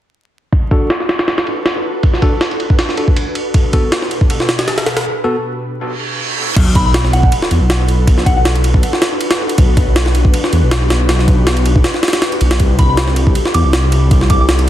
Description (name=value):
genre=drum and bass, jungle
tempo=159 BPM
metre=4/4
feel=swing 54% on 16ths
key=B phrygian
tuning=A4 = 440 Hz
part: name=ethereal airy pad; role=sustained chords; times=1.1-14.7 s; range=B2 to B4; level=-23 LUFS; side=left 1 dB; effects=ensemble chorus, built-in reverb
part: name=jungle sampler-style drum kit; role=drums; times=0.5-14.7 s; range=crash cymbal, kick drum, ride cymbal, snare drum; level=-13 LUFS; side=equal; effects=low-pass filter on cymbals, low-pass filter on kick, low-pass filter on snare, low-pass filter on room
part: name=bell-like tine electric piano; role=stabs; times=0.7-5.4 s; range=B3 to A4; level=-22 LUFS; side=left 1 dB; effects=low-pass filter, dub echo
part: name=reverse cymbal and sub drop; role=sound effects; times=5.9-8.1 s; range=none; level=-22 LUFS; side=right 2 dB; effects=none
part: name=dark detuned saw bass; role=bass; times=6.6-14.7 s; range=B1 to E2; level=-13 LUFS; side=equal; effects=none
part: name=soft synth bell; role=melody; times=6.8-8.4, 12.8-14.5 s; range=F#5 to D6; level=-21 LUFS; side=equal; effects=chorus, phaser, dub echo
room=little or no reverb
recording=dense, heavily limited modern master, vinyl crackle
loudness=-11 LUFS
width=side -12 dB against mid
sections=0.5-6.6 A section; 6.6-14.7 B section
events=filter sweep on tine electric piano 0.5-6.6; break 5.1-6.6; reverse cymbal 5.9-6.6; drop 6.6-14.7; impact 6.6-8.1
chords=0.5 Bm7; 3.5 Gmaj7/B; 6.6 Bm7; 9.6 Gmaj7/B; 12.6 C6